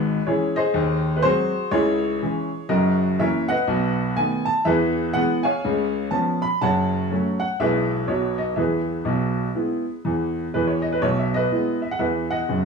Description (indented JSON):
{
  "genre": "jazz, stride piano",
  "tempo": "122 BPM",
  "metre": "4/4",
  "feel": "swing 62% on 8ths",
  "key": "E major",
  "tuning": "A4 = 442 Hz",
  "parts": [
    { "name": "clear grand piano", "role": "solo", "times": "0.0-12.7 s", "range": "F#1 to B5", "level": "-20 LUFS", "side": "equal", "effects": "none" }
  ],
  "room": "moderate studio reverb, RT60 0.9 s",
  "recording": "studio ambience",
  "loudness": "-20 LUFS",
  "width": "side -5 dB against mid",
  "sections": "0.0-10.5 A section; 10.5-12.7 A section",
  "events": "none",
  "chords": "0.0 C#m; 0.7 G#7/D#; 1.7 C#m; 2.7 F#7; 3.7 B7; 4.7 E; 5.6 C#7; 6.6 F#m; 7.6 E/B; 8.1 B; 8.6 E",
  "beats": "0.24 | 0.73 1.23 1.72 2.21 | 2.69 3.19 3.67 4.17 | 4.66 5.15 5.64 6.13 | 6.62 7.11 7.60 8.09 | 8.58 9.07 9.56 10.05 | 10.55 11.04 11.53 12.02 | 12.51"
}